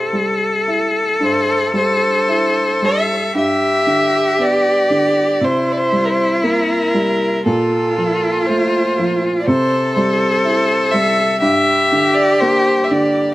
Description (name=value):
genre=celtic folk, Celtic slow air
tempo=55-62 BPM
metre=4/4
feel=rubato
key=unclear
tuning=A4 = 441 Hz
part: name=dark fiddle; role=melody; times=0.0-13.3 s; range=A4 to E5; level=-17 LUFS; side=equal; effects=slapback echo
part: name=clear cello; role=second line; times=0.0-13.3 s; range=E4 to A4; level=-17 LUFS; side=left 1 dB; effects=none
part: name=warm upright piano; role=accompaniment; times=0.0-13.3 s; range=G2 to G4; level=-20 LUFS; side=right 1 dB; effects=none
room=little or no reverb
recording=recorded outdoors, with no room sound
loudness=-13 LUFS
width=side -16 dB against mid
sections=0.0-13.3 A section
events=none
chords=0.0 C; 3.3 G; 5.4 C7; 7.4 Bb5; 9.5 C; 11.4 Gm